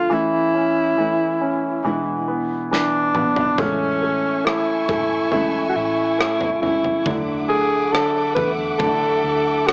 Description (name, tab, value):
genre	pop ballad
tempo	69 BPM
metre	4/4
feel	straight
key	A major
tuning	A4 = 440 Hz
part	growling alto saxophone	melody	0.0-9.7 s	C#4 to B4	-22 LUFS	equal	cassette tape
part	clear concert grand piano	accompaniment	0.0-9.7 s	D3 to C#4	-28 LUFS	equal	cassette tape
part	nylon-string guitar	arpeggios	0.0-9.7 s	E2 to E4	-30 LUFS	equal	cassette tape, tape echo
part	modern studio drum kit	drums	2.7-9.7 s	kick drum, rim click, snare drum, toms	-28 LUFS	equal	cassette tape
part	warm studio string section	sustained chords	3.6-9.7 s	E5 to D6	-30 LUFS	equal	cassette tape
part	vintage muted fingered electric bass	bass	3.6-9.7 s	G#1 to E2	-38 LUFS	equal	none
room	small room ambience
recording	home recording on cassette, small speaker sound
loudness	-20 LUFS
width	mono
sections	0.0-9.7 A section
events	drum fill 2.7-3.6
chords	0.1 A/E; 1.8 E7; 3.6 Amaj7; 7.1 Dadd9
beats	| 0.10 0.97 1.84 2.71 | 3.58 4.45 5.32 6.19 | 7.06 7.93 8.80 9.67